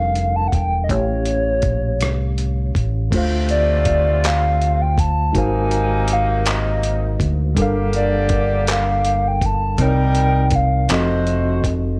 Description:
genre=slow six-eight R&B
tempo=54 BPM (dotted quarters)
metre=6/8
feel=straight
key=D minor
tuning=A4 = 441 Hz
part: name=hollow clarinet-like synth lead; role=melody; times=0.0-11.7 s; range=C#5 to A5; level=-23 LUFS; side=equal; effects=chorus
part: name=mellow tine electric piano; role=accompaniment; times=0.0-12.0 s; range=A2 to F5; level=-25 LUFS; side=equal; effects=none
part: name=deep dub fingered electric bass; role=bass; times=0.0-12.0 s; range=E1 to D2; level=-22 LUFS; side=equal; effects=none
part: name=dusty soul sampler-style drum kit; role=drums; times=0.2-11.8 s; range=crash cymbal, handclaps, hi-hat, kick drum, rim click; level=-26 LUFS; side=equal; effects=overdrive
part: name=clear horn section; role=stabs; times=3.1-11.6 s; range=C3 to C5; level=-31 LUFS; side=equal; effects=none
room=light reverb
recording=none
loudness=-18 LUFS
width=mono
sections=0.0-3.1 A section; 3.1-12.0 B section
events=none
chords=0.0 Gm9; 0.9 A7alt; 3.1 Dm7; 5.3 G#13; 7.6 Gm7; 9.8 Cm7; 10.9 F7b9

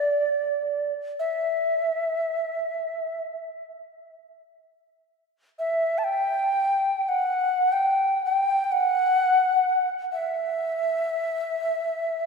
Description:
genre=world meditative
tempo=free time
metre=none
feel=none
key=E minor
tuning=A4 = 439 Hz
part: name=mellow Native American-style cedar flute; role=solo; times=0.0-12.3 s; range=D5 to A5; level=-22 LUFS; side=equal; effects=analog delay
room=wet lush hall reverb, RT60 2.8 s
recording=dreamy mix soaked in reverb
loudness=-22 LUFS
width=side -4 dB against mid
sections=0.0-12.3 A section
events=none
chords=none

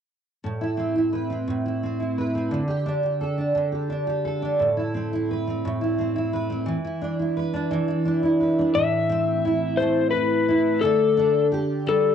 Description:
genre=pop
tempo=58 BPM (dotted quarters)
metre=6/8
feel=straight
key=A minor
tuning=A4 = 439 Hz
part: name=picked steel-string acoustic guitar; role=accompaniment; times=0.4-12.1 s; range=A2 to B4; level=-22 LUFS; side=right 2 dB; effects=double-tracked left and right, cassette tape
part: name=electric slide guitar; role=melody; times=8.7-12.1 s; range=A4 to E5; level=-21 LUFS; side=left 6 dB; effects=cassette tape
room=moderate spring reverb, RT60 1.1 s, studio reverb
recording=home recording on cassette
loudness=-21 LUFS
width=side -8 dB against mid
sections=0.4-8.7 A section; 8.7-12.1 B section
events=none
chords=0.4 Amadd9; 2.5 Dsus4; 4.6 Amadd9; 6.7 E5; 8.7 Amadd9; 10.8 Dsus4

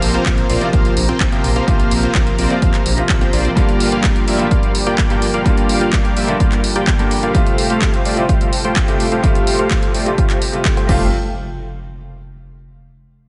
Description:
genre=EDM, festival progressive house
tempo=127 BPM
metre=4/4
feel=straight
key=F major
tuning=A4 = 440 Hz
part: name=bright concert grand piano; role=accompaniment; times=0.0-11.1 s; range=G2 to G4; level=-23 LUFS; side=equal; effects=sidechain pumping, digital delay
part: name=lush unison pad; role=sustained chords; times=0.0-11.1 s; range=F3 to Bb5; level=-28 LUFS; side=equal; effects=chorus, sidechain pumping
part: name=dense compressed supersaw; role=riff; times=0.0-11.1 s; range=A3 to G5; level=-23 LUFS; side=equal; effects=sidechain pumping, low-pass filter, digital delay
part: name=detuned saw bass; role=bass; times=0.0-3.5, 10.9-11.1 s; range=F1 to F2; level=-23 LUFS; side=equal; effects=chorus, sidechain pumping
part: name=house drum kit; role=drums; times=0.0-11.0 s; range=crash cymbal, handclaps, hi-hat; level=-26 LUFS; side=equal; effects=none
part: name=electronic kick drum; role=drums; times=0.3-11.0 s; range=none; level=-19 LUFS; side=equal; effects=none
part: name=impact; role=sound effects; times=11.0-12.8 s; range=none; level=-30 LUFS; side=equal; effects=none
room=light reverb, digital ambience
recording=nothing above 10.7 kHz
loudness=-15 LUFS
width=mono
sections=0.0-11.1 A section; 11.1-13.0 B section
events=filter sweep on supersaw synth 0.0-11.1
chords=0.0 Bbsus2; 3.6 Gm7; 7.3 Fadd9; 11.1 N.C.

